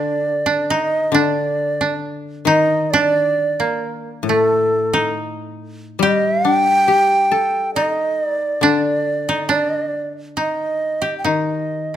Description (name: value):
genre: japanese traditional, Japanese chamber music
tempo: 68 BPM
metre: 4/4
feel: rubato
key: D miyako bushi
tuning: A4 = 440 Hz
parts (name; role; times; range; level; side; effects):
- long shakuhachi; melody; 0.0-12.0 s; A4 to G5; -18 LUFS; right 2 dB; none
- koto; second line; 0.0-12.0 s; A3 to G4; -21 LUFS; right 2 dB; none
- koto; accompaniment; 0.0-12.0 s; A2 to A4; -23 LUFS; left 6 dB; none
room: light reverb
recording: close, detailed microphones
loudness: -16 LUFS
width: side -11 dB against mid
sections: 0.0-12.0 A section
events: none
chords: none